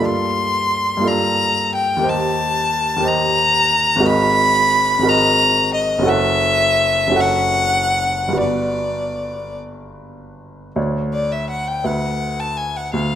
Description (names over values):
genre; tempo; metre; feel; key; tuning
classical, impressionist duo for violin and grand piano; 48-61 BPM (dotted quarters); 6/8; rubato; unclear; A4 = 440 Hz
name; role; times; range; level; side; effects
rich violin; melody; 0.0-13.2 s; D5 to C6; -16 LUFS; left 1 dB; none
clear baby grand piano; accompaniment; 0.0-13.2 s; F#1 to F#5; -20 LUFS; right 1 dB; none
room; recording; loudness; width
moderate recital hall reverb, RT60 1.5 s; none; -15 LUFS; side -10 dB against mid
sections
0.0-10.8 A section; 10.8-13.2 B section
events
none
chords
0.0 Gm9; 2.1 Eb6; 4.1 G#m9; 6.1 F#m7; 8.4 Gmaj7; 10.8 Dmaj7(no3); 11.8 Esus2/D